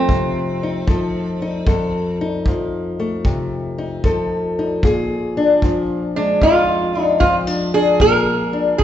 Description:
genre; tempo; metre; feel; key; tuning
acoustic country blues, solo or duo; 76 BPM; 4/4; swing 67% on 8ths; F mixolydian; A4 = 445 Hz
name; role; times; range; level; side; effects
lap resonator guitar; melody; 0.0-8.8 s; C4 to Bb4; -17 LUFS; right 2 dB; none
fingerpicked old ladder-braced acoustic guitar; accompaniment; 0.0-8.8 s; F2 to A4; -19 LUFS; left 2 dB; none
kick drum; drums; 0.1-8.8 s; none; -20 LUFS; equal; none
room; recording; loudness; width
wet recital hall reverb, RT60 1.7 s; recorded in a church or concert hall, nothing above 7.8 kHz; -16 LUFS; side -11 dB against mid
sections
0.0-8.8 A section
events
none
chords
0.0 F7; 4.8 Bb7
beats
0.10 0.89 | 1.68 2.47 3.26 4.05 | 4.84 5.63 6.42 7.21 | 8.01 8.80

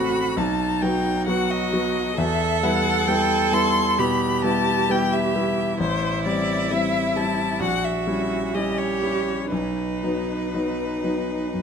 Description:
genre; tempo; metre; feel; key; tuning
classical, slow romantic movement for piano trio; 58-68 BPM; 4/4; rubato; E minor; A4 = 440 Hz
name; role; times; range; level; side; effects
rich violin; melody; 0.0-11.6 s; B4 to C6; -25 LUFS; left 5 dB; none
clear cello; second line; 0.0-11.6 s; D#4 to A4; -25 LUFS; right 8 dB; none
clear grand piano; accompaniment; 0.0-11.6 s; A1 to F#4; -24 LUFS; left 2 dB; none
room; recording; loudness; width
moderate recital hall reverb, RT60 1.4 s; close, detailed microphones; -20 LUFS; side -7 dB against mid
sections
0.0-11.6 A section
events
none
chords
0.4 B; 2.2 Em; 5.8 Am7; 7.6 A#dim7; 9.5 B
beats
0.38 1.27 | 2.18 3.07 3.98 4.89 | 5.79 6.70 7.60 8.53 | 9.52 10.53 11.54

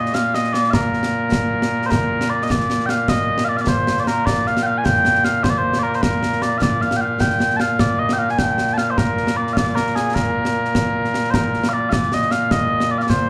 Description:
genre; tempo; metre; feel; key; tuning
scottish traditional, Scottish pipe music; 102 BPM (dotted quarters); 6/8; straight; Bb major; A4 = 440 Hz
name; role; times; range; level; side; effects
mellow small bagpipes; melody; 0.0-13.3 s; Bb2 to A5; -20 LUFS; equal; slapback echo
concert snare drum and concert bass drum; drums; 0.1-13.2 s; none; -24 LUFS; equal; none
room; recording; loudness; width
light reverb, small room ambience; live gig heard through the venue's PA, club reverb; -19 LUFS; mono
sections
0.0-1.9 A section; 1.9-11.3 B section; 11.3-13.3 B section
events
none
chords
none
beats
0.15 | 0.74 1.33 | 1.92 2.50 | 3.09 3.68 | 4.27 4.86 | 5.45 6.03 | 6.62 7.21 | 7.80 8.39 | 8.97 9.56 | 10.15 10.74 | 11.33 11.92 | 12.50 13.09

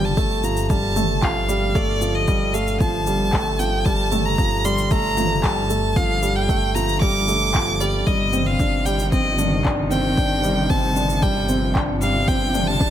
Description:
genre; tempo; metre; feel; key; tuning
piano and strings electronica; 114 BPM; 4/4; straight; G minor; A4 = 440 Hz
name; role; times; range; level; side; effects
clear violin; melody; 0.0-12.9 s; D5 to D6; -23 LUFS; equal; none
felt-muted upright piano; riff; 0.0-12.9 s; F3 to D4; -23 LUFS; right 1 dB; none
dark detuned saw bass; bass; 0.0-12.9 s; G1; -25 LUFS; equal; sidechain pumping
deep house drum kit; drums; 0.2-12.9 s; handclaps, shaker, toms; -28 LUFS; left 1 dB; none
electronic kick drum; drums; 0.2-12.9 s; none; -22 LUFS; equal; none
rich studio string section; sustained chords; 8.1-12.9 s; C3 to F3; -27 LUFS; equal; sidechain pumping
room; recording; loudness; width
light reverb; none; -18 LUFS; side -10 dB against mid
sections
0.0-12.9 A section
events
none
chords
0.0 G7sus2; 8.1 Cmadd9/G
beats
0.17 0.70 1.23 | 1.75 2.28 2.81 3.33 | 3.86 4.38 4.91 5.44 | 5.96 6.49 7.02 7.54 | 8.07 8.60 9.12 9.65 | 10.17 10.70 11.23 11.75 | 12.28 12.81

